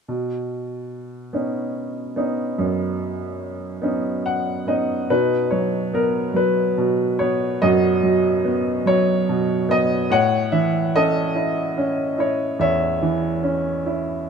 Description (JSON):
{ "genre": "folk", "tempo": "48 BPM (dotted quarters)", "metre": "6/8", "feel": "straight", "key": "B major", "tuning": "A4 = 440 Hz", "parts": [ { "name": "clear upright piano", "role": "melody", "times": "0.1-14.3 s", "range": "E2 to F#5", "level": "-19 LUFS", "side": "equal", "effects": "none" } ], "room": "moderate plate reverb, RT60 2.8 s", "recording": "minimal, uncompressed stereo recording", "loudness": "-18 LUFS", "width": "side -6 dB against mid", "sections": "0.1-5.1 A section; 5.1-14.3 B section", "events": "upright piano fill 3.8-5.1, 13.9-14.3", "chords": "0.1 Badd9; 10.1 A" }